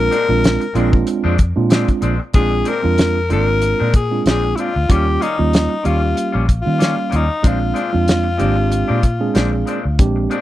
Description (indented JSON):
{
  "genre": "straight-eighth soul blues",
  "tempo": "94 BPM",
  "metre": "4/4",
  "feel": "swing 55% on 16ths",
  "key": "Bb mixolydian",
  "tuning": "A4 = 438 Hz",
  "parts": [
    { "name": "raspy tenor saxophone", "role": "melody", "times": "0.0-10.0 s", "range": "Eb4 to Bb4", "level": "-20 LUFS", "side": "left 4 dB", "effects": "none" },
    { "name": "mellow tine electric piano", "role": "accompaniment", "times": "0.0-10.3 s", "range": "G3 to Ab4", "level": "-20 LUFS", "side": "right 5 dB", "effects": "none" },
    { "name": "vintage muted fingered electric bass", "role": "bass", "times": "0.0-10.3 s", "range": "Ab1 to Eb3", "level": "-19 LUFS", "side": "equal", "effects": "none" },
    { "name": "semi-hollow electric guitar", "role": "stabs", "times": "0.1-10.4 s", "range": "Bb2 to F4", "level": "-26 LUFS", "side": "left 5 dB", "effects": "none" },
    { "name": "warm soul drum kit", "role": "drums", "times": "0.1-10.4 s", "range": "hi-hat, kick drum, snare drum", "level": "-15 LUFS", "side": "equal", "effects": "none" }
  ],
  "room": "small room ambience",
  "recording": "dry, close 1970s-style studio recording",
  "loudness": "-14 LUFS",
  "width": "side -14 dB against mid",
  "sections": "0.0-2.3 A section; 2.3-10.4 B section",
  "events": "tenor saxophone solo 0.0-2.3",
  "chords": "0.0 Bb9; 4.9 Eb9; 7.4 Bb9"
}